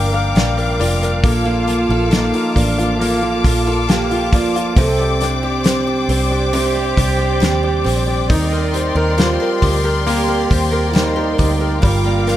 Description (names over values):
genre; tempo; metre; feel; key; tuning
pop ballad; 68 BPM; 4/4; straight; unclear; A4 = 440 Hz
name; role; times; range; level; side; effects
warm concert grand piano; accompaniment; 0.0-12.4 s; G3 to G5; -21 LUFS; left 2 dB; none
warm studio string section; sustained chords; 0.0-12.4 s; Bb3 to D6; -22 LUFS; left 3 dB; none
picked steel-string acoustic guitar; arpeggios; 0.0-12.4 s; G2 to Bb4; -23 LUFS; right 3 dB; none
vintage muted fingered electric bass; bass; 0.0-12.4 s; F1 to Eb2; -20 LUFS; equal; none
loose indie drum kit; drums; 0.4-12.4 s; hi-hat, kick drum, snare drum; -19 LUFS; equal; none
mellow French horn section; second line; 1.2-12.4 s; D4 to A4; -22 LUFS; right 5 dB; none
room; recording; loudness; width
small room ambience; none; -14 LUFS; side -12 dB against mid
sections
0.0-12.4 A section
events
grand piano fill 0.0-1.2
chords
0.0 Gm7; 1.2 Bbmaj7; 4.8 Csus2; 8.3 Eb6; 11.8 Gm7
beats
0.36 | 1.24 2.12 3.00 3.89 | 4.77 5.65 6.53 7.42 | 8.30 9.18 10.06 10.95 | 11.83